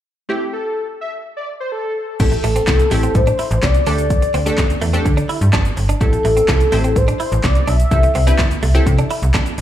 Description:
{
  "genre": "dance-pop",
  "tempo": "126 BPM",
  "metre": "4/4",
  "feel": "straight",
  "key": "A minor",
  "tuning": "A4 = 439 Hz",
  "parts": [
    { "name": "wide unison lead", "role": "melody", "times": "0.3-2.1 s", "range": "G4 to E5", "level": "-24 LUFS", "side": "left 1 dB", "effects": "slapback echo, ping-pong delay" },
    { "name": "wavetable chord stab", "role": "accompaniment", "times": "0.3-9.3 s", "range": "A3 to C5", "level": "-24 LUFS", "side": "left 2 dB", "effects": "sidechain pumping, slapback echo" },
    { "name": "warm velvety synth lead", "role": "melody", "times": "2.2-8.4 s", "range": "A4 to E5", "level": "-20 LUFS", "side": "left 1 dB", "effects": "chorus, slapback echo, ping-pong delay" },
    { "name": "slap-like FM bass", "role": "bass", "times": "2.2-9.6 s", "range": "G1 to D3", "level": "-16 LUFS", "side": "equal", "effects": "sidechain pumping" },
    { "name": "deep house drum kit", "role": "drums", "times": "2.2-9.6 s", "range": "crash cymbal, handclaps, hi-hat, kick drum, shaker, snare drum", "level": "-19 LUFS", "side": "equal", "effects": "overdrive" },
    { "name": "direct-recorded clean electric guitar", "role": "riff", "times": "2.3-9.6 s", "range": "A3 to E4", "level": "-26 LUFS", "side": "right 5 dB", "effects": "ensemble chorus, slapback echo" }
  ],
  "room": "light reverb",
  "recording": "live gig heard through the venue's PA, club reverb",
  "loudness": "-14 LUFS",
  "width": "side -12 dB against mid",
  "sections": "0.3-2.2 A section; 2.2-9.6 B section",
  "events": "none",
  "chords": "0.3 Am7; 2.0 N.C.; 2.2 Am7; 3.9 Dsus4; 6.0 Am7; 7.9 C6"
}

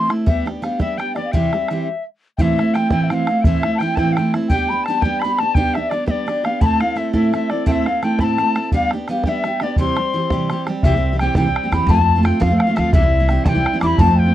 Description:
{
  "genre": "celtic folk, Celtic jig",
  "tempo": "114 BPM (dotted quarters)",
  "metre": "6/8",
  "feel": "straight",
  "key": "C major",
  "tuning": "A4 = 441 Hz",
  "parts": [
    { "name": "mellow hollow baroque flute", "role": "melody", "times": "0.0-14.3 s", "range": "C5 to B5", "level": "-22 LUFS", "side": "left 2 dB", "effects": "none" },
    { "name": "picked steel-string acoustic guitar", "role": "accompaniment", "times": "0.0-14.3 s", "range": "A2 to A4", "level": "-20 LUFS", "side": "right 2 dB", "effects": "none" },
    { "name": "bodhran", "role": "percussion", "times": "0.1-14.2 s", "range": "none", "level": "-19 LUFS", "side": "equal", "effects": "none" },
    { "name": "mellow wooden whistle", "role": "second line", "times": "0.3-14.3 s", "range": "D5 to D6", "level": "-24 LUFS", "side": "left 4 dB", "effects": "none" },
    { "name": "upright bass", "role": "bass", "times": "10.8-14.3 s", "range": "C2 to F2", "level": "-18 LUFS", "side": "equal", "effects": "none" }
  ],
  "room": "light reverb",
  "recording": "dry, close 1970s-style studio recording",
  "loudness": "-15 LUFS",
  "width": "side -13 dB against mid",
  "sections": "0.0-2.4 A section; 2.4-10.8 A section; 10.8-14.3 B section",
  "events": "stop 1.9-2.4",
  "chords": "0.3 G; 1.3 C; 2.4 Am; 4.5 G; 6.6 Am; 8.7 G; 9.8 C; 11.9 F; 12.9 C"
}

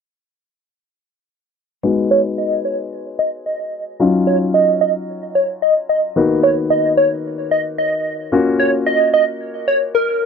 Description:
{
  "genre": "pop",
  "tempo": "111 BPM",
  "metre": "4/4",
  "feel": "straight",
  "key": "G# dorian",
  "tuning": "A4 = 441 Hz",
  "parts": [
    { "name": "warm concert grand piano", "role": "accompaniment", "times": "1.8-10.3 s", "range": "D#3 to F#4", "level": "-19 LUFS", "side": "left 4 dB", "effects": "low-pass filter" },
    { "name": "plucky unison lead", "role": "melody", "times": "2.1-10.3 s", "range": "A#4 to D#5", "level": "-16 LUFS", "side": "right 2 dB", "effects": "phaser, low-pass filter, tape echo" }
  ],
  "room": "light reverb",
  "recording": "dry, close 1970s-style studio recording",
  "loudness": "-15 LUFS",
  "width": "side -6 dB against mid",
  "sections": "1.8-10.3 A section",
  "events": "filter sweep 1.8-10.3",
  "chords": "1.8 G#m7; 4.0 D#m9; 6.2 Bmaj7/D#; 8.3 F#maj7"
}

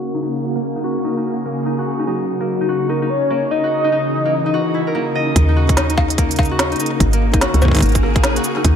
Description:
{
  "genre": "IDM",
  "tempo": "146 BPM",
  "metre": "4/4",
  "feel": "swing 62% on 16ths",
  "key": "unclear",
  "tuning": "A4 = 441 Hz",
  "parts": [
    { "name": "soft string machine", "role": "sustained chords", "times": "0.0-8.8 s", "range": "Db3 to Ab4", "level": "-21 LUFS", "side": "equal", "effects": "ensemble chorus" },
    { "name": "concert harp", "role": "arpeggios", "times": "0.0-8.8 s", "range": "Bb3 to Eb5", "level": "-23 LUFS", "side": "left 2 dB", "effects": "low-pass filter, tape echo" },
    { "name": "warm velvety synth lead", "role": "melody", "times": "2.1-4.9 s", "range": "Gb4 to Eb5", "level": "-20 LUFS", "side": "left 1 dB", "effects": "chorus, tremolo, ping-pong delay" },
    { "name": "woody FM bass", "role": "bass", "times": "5.4-8.8 s", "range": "Ab1 to Eb2", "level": "-16 LUFS", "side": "equal", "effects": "none" },
    { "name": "electronic kick drum", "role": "drums", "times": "5.4-8.7 s", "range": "none", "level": "-17 LUFS", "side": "equal", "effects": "overdrive" },
    { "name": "organic electronic drum kit", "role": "drums", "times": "5.4-8.7 s", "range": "cowbell, hi-hat, rim click, shaker, snare drum", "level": "-20 LUFS", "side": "equal", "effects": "overdrive, low-pass filter on hats, low-pass filter on snare, low-pass filter on perc, low-pass filter on room, ping-pong delay" }
  ],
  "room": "light reverb",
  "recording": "low-pass filter",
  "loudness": "-15 LUFS",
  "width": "side -8 dB against mid",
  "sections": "0.0-5.4 A section; 5.4-8.8 B section",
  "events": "filter sweep on drum 0.0-5.4; filter sweep on harp 0.0-5.4; filter sweep 0.0-5.4",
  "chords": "0.4 Ab9sus4; 3.7 Dbmadd9; 5.4 Ebm7; 7.0 Ab9sus4"
}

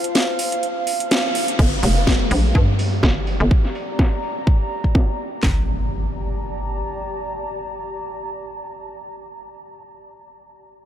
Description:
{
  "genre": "bass house",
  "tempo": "125 BPM",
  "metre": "4/4",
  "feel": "swing 55% on 16ths",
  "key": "G minor",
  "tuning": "A4 = 437 Hz",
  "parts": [
    { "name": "house drum kit", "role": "drums", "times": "0.0-5.3 s", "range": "crash cymbal, hi-hat, snare drum", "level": "-24 LUFS", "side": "equal", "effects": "low-pass filter on hats, low-pass filter on snare, low-pass filter on cymbals, low-pass filter on room" },
    { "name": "warbly tape-like pad", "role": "texture", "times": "0.0-9.9 s", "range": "F4 to Bb5", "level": "-27 LUFS", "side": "right 1 dB", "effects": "chorus, built-in reverb, sidechain pumping" },
    { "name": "hollow knocking FM bass", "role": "bass", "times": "1.6-6.8 s", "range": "F1 to G2", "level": "-20 LUFS", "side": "equal", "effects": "overdrive, sidechain pumping" },
    { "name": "house drum kit", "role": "drums", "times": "1.6-5.6 s", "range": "handclaps, kick drum, snare drum", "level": "-17 LUFS", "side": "equal", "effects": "none" },
    { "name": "downlifter and impact", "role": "sound effects", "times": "1.6-9.7 s", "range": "none", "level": "-28 LUFS", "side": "equal", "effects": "none" }
  ],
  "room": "moderate huge ambient reverb, RT60 7.9 s",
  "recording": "dreamy mix soaked in reverb",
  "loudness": "-18 LUFS",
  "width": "side -11 dB against mid",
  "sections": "0.0-1.6 A section; 1.6-5.4 B section; 5.4-9.3 C section",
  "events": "break 0.0-1.6; drop 0.0-1.6; band accent 1.1; filter sweep on drum 1.6-5.4",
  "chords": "0.0 F; 1.6 Gm; 5.4 Gmadd9"
}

